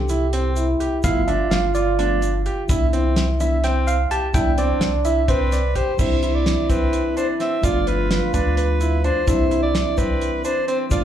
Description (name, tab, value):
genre	progressive instrumental, band music in an uneven meter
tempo	255 BPM (eighths)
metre	7/8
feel	straight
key	C major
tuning	A4 = 439 Hz
part	trombone with bucket mute	second line	0.0-11.0 s	D4 to G4	-26 LUFS	equal	plate reverb, slapback echo, ping-pong delay
part	barky tine electric piano	accompaniment	0.0-11.0 s	E3 to A5	-26 LUFS	equal	plate reverb, slapback echo
part	rubbery square bass	bass	0.0-11.0 s	G1 to D2	-22 LUFS	equal	none
part	bright grand piano	arpeggios	0.1-11.0 s	C4 to G4	-26 LUFS	right 4 dB	plate reverb, slapback echo
part	damped 70s drum kit	drums	0.1-11.0 s	crash cymbal, hi-hat, kick drum, snare drum	-24 LUFS	equal	none
part	tube shaker	percussion	0.1-11.0 s	none	-39 LUFS	right 2 dB	none
part	mellow soprano saxophone	melody	5.3-11.0 s	B4 to E5	-24 LUFS	equal	plate reverb, slapback echo, ping-pong delay
room	light reverb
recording	live gig heard through the venue's PA, club reverb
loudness	-17 LUFS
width	side -10 dB against mid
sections	0.0-6.0 A section; 6.0-11.0 B section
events	tine electric piano solo 0.0-6.0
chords	0.0 C; 1.0 G7; 2.7 Cmaj9; 6.0 Cmaj7; 7.6 G7; 9.3 Cmaj7